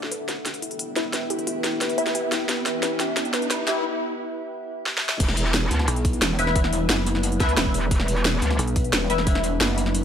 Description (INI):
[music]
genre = dark technical drum and bass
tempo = 177 BPM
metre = 4/4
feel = straight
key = E minor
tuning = A4 = 436 Hz
[part]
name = dark analog pad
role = sustained chords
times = 0.1-10.0 s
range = G3 to E5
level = -30 LUFS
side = left 1 dB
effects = chorus, phaser, sidechain pumping
[part]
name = drum and bass drum kit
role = drums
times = 0.0-10.0 s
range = crash cymbal, hi-hat, snare drum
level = -25 LUFS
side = equal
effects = high-pass filter on hats, studio reverb, high-pass filter on snare, high-pass filter on cymbals
[part]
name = riser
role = sound effects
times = 0.9-3.8 s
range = none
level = -34 LUFS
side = left 2 dB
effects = none
[part]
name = granular cloud pad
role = texture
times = 0.0-3.8 s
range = D4 to G5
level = -32 LUFS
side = left 2 dB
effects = built-in reverb, sidechain pumping
[part]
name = warbly dusty pluck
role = arpeggios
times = 0.1-3.8 s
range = E4 to B4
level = -33 LUFS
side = right 2 dB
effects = chorus, sidechain pumping, tape echo
[part]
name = band-passed chord stab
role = stabs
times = 1.0-3.8, 6.4-10.0 s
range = E4 to E5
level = -30 LUFS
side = left 2 dB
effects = phaser, ensemble chorus, tape echo
[part]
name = metallic wobble bass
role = bass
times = 5.2-8.6 s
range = E1 to D2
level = -23 LUFS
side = equal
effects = chorus, overdrive, sidechain pumping
[part]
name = crunchy breakbeat drum kit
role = drums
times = 5.2-10.0 s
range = hi-hat, snare drum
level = -38 LUFS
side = equal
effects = none
[part]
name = electronic kick drum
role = drums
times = 5.2-9.3 s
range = none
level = -23 LUFS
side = equal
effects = studio reverb
[part]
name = pulsing pluck wobble bass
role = bass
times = 5.9-10.0 s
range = E1 to B1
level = -24 LUFS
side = equal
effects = chorus
[sound]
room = light reverb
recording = high-pass filter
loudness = -21 LUFS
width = side -8 dB against mid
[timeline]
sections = 0.0-5.2 A section; 5.2-10.0 B section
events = build-up 0.0-5.2; drum fill 0.0-3.8, 4.9-5.2; filter sweep on synth arpeggio sound 0.0-5.2; riser 0.9-3.8; break 3.8-5.2; drop 5.2-10.0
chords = 0.0 Em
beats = 0.12 0.45 0.79 | 1.13 1.47 1.81 2.15 | 2.49 2.83 3.17 3.50 | 3.84 4.18 4.52 4.86 | 5.20 5.54 5.88 6.22 | 6.56 6.89 7.23 7.57 | 7.91 8.25 8.59 8.93 | 9.27 9.61 9.95